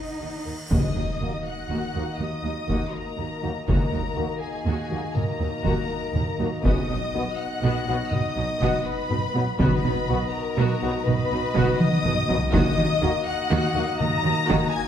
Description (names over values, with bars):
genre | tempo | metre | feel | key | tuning
cinematic, epic orchestral film score | 81 BPM (dotted quarters) | 12/8 | straight | Eb minor | A4 = 440 Hz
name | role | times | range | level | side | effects
rich symphonic violin section | melody | 0.0-14.9 s | Gb5 to Bb6 | -33 LUFS | left 3 dB | none
mellow French horn section | sustained chords | 0.0-14.6 s | Bb3 to Gb4 | -34 LUFS | left 4 dB | none
warm symphonic cello section | bass | 0.0-14.6 s | Eb2 to Eb4 | -30 LUFS | right 3 dB | none
cymbal swell and impact | sound effects | 0.0-3.7 s | none | -33 LUFS | equal | none
warm symphonic violin section | second line | 0.2-14.9 s | Gb4 to Bb5 | -31 LUFS | left 5 dB | none
warm symphonic viola section | accompaniment | 0.2-14.7 s | Eb3 to Bb4 | -32 LUFS | right 1 dB | none
warm symphonic double bass section | bass | 0.2-14.6 s | B1 to Eb2 | -29 LUFS | right 3 dB | none
mellow woodwind section | sustained chords | 0.7-14.9 s | Bb3 to Eb5 | -32 LUFS | left 2 dB | none
taiko ensemble | drums | 0.7-14.9 s | none | -26 LUFS | equal | none
timpani | percussion | 12.5-13.2 s | Eb3 | -32 LUFS | left 1 dB | none
room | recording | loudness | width
wet scoring stage reverb, RT60 1.6 s | none | -22 LUFS | side -9 dB against mid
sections
0.7-14.9 A section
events
cymbal swell 0.0-0.7; impact 0.7-3.7; drum fill 11.8-12.5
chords
0.0 Ebm; 6.7 B; 12.5 Ebm